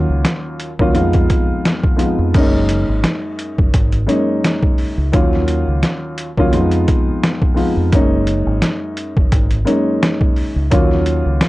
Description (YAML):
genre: hip hop, boom-bap hip-hop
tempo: 86 BPM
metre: 4/4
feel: swing 55% on 16ths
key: F# major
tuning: A4 = 440 Hz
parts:
  - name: dark concert grand piano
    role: accompaniment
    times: 0.0-11.5 s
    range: D#2 to E#4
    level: -18 LUFS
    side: equal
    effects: high-pass filter, low-pass filter
  - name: deep dub fingered electric bass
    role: bass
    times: 0.0-11.4 s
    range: F#1 to F2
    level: -18 LUFS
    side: equal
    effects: none
  - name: trip hop sampler-style drum kit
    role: drums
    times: 0.2-11.5 s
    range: crash cymbal, hi-hat, kick drum, snare drum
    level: -16 LUFS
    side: equal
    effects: overdrive, vintage 12-bit sampler grit
room: little or no reverb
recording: dry, gritty hardware recording, transformer saturation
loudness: -13 LUFS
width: side -18 dB against mid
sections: 0.0-2.3 A section; 2.3-11.5 A section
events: none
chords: 0.0 D#m7; 0.9 Fm7b5; 2.3 F#69; 5.1 D#m7; 6.5 Fm7b5; 7.9 F#69; 10.7 D#m7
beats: 0.25 0.95 1.65 | 2.35 3.04 3.74 4.44 | 5.14 5.83 6.53 7.23 | 7.93 8.62 9.32 10.02 | 10.72 11.41